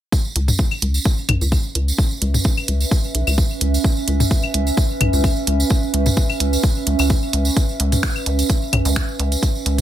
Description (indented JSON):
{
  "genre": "minimal techno",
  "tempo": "129 BPM",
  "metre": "4/4",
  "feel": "swing 54% on 16ths",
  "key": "C# minor",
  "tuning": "A4 = 441 Hz",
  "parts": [
    { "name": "electronic kick drum", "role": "drums", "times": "0.1-9.5 s", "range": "none", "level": "-18 LUFS", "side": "equal", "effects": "none" },
    { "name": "tambourine", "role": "percussion", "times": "0.1-9.8 s", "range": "none", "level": "-27 LUFS", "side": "right 4 dB", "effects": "none" },
    { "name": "warbly tape-like pad", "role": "texture", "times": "0.9-9.8 s", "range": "C#4 to E5", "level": "-24 LUFS", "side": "right 3 dB", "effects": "chorus, built-in reverb, sidechain pumping" },
    { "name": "rubbery square bass", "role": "bass", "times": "0.4-9.8 s", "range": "B1 to C#2", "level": "-19 LUFS", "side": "equal", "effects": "sidechain pumping" },
    { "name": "house drum kit", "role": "drums", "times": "0.4-9.8 s", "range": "finger snaps, hi-hat", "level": "-23 LUFS", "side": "right 3 dB", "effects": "none" },
    { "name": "electronic toms and claves", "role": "percussion", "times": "0.5-9.8 s", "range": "none", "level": "-21 LUFS", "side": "left 2 dB", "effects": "none" }
  ],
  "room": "little or no reverb",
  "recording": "none",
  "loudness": "-16 LUFS",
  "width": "side -12 dB against mid",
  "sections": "0.1-9.8 A section",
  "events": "none",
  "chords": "0.1 C#m7"
}